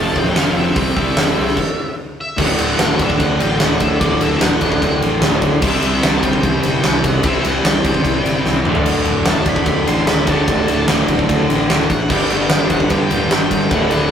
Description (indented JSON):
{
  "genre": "classic rock",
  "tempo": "148 BPM",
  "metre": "4/4",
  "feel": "straight",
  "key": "D mixolydian",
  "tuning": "A4 = 441 Hz",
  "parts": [
    { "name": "octave-fuzz lead guitar", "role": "melody", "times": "0.0-14.1 s", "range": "D5 to C6", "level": "-25 LUFS", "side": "left 1 dB", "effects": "distortion" },
    { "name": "string machine, violins", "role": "sustained chords", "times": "0.0-14.1 s", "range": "none", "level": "barely audible", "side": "none", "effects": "none" },
    { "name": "cranked stack guitar", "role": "riff", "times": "0.0-14.1 s", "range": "D2 to C5", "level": "-22 LUFS", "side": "left 3 dB", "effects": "overdrive" },
    { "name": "cranked stack guitar", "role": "riff", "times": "0.0-14.1 s", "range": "D2 to C4", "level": "-22 LUFS", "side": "right 3 dB", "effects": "overdrive" },
    { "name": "distorted electric guitar", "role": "riff", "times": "0.0-14.1 s", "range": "D2 to C4", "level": "-22 LUFS", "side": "equal", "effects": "overdrive" },
    { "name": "fuzz fingered electric bass", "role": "bass", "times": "0.0-14.1 s", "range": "D1 to G2", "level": "-23 LUFS", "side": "equal", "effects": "overdrive" },
    { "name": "huge arena drum kit", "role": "drums", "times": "0.2-14.0 s", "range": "crash cymbal, hi-hat, kick drum, ride cymbal, snare drum, toms", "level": "-17 LUFS", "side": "equal", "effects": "none" }
  ],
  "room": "moderate studio reverb, RT60 0.5 s",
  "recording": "rough rehearsal-room recording, tube saturation",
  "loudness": "-13 LUFS",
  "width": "side -8 dB against mid",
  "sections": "0.0-2.4 A section; 2.4-14.1 B section",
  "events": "stop 1.6-2.4; drum fill 8.5-8.9",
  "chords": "0.0 F; 0.8 C; 2.4 D; 5.6 C; 8.7 D; 12.1 G",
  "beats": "0.37 | 0.78 1.18 1.59 1.99 | 2.40 2.80 3.20 3.61 | 4.01 4.42 4.82 5.22 | 5.63 6.03 6.44 6.84 | 7.25 7.65 8.05 8.46 | 8.86 9.27 9.67 10.08 | 10.48 10.89 11.29 11.70 | 12.10 12.51 12.91 13.31 | 13.72"
}